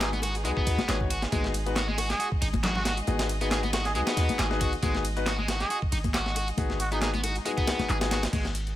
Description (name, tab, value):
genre	breakbeat, breaks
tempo	137 BPM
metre	4/4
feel	swing 55% on 16ths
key	G# minor pentatonic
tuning	A4 = 440 Hz
part	trumpet with cup mute	melody	0.0-7.1 s	D#4 to G#4	-35 LUFS	right 2 dB	telephone sound, ping-pong delay
part	bright studio string section	sustained chords	0.0-8.3 s	G#3 to D#5	-38 LUFS	equal	sidechain pumping
part	distorted electric guitar	riff	0.0-8.4 s	G#3 to G#4	-33 LUFS	equal	overdrive, tube saturation, low-pass filter, ping-pong delay
part	warm concert grand piano	stabs	0.0-8.2 s	B3 to C#5	-32 LUFS	left 5 dB	ping-pong delay
part	warm 808-style bass	bass	0.0-8.8 s	G#1 to D#2	-30 LUFS	equal	none
part	breakbeat sampler-style drum kit	drums	0.0-8.7 s	crash cymbal, hi-hat, kick drum, snare drum	-30 LUFS	right 1 dB	none
part	punchy analog drum machine	drums	0.0-8.7 s	handclaps, hi-hat, ride cymbal	-37 LUFS	equal	none
part	congas and bongos	percussion	0.1-8.4 s	none	-36 LUFS	left 4 dB	none
room	light reverb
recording	none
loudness	-25 LUFS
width	side -13 dB against mid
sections	0.0-8.3 A section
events	drop 0.0-8.3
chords	0.0 G#m7